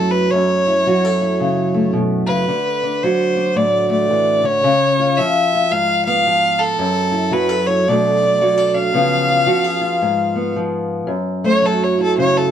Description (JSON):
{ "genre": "acoustic country blues, solo or duo", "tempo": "111 BPM", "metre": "4/4", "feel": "swing 64% on 8ths", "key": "F# minor", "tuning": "A4 = 437 Hz", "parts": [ { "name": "rich fiddle", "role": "melody", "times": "0.0-12.5 s", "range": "A4 to E#5", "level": "-16 LUFS", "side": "right 1 dB", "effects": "none" }, { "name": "fingerpicked steel-string acoustic guitar", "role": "accompaniment", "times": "0.0-12.5 s", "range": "F#2 to A4", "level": "-17 LUFS", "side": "left 1 dB", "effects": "none" } ], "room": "moderate studio reverb, RT60 0.5 s", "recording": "dark, warm production", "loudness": "-14 LUFS", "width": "side -9 dB against mid", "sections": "0.0-11.1 A section; 11.1-12.5 B section", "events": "fiddle solo 11.1-12.5", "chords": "0.0 F#m7; 2.5 D7; 4.6 C#7; 6.8 F#m7; 7.9 Bm7; 8.9 C#7; 11.1 F#m7", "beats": "| 0.32 0.86 1.40 1.93 | 2.47 3.01 3.55 4.09 | 4.62 5.16 5.70 6.24 | 6.78 7.32 7.86 8.40 | 8.94 9.48 10.02 10.56 | 11.10 11.64 12.18" }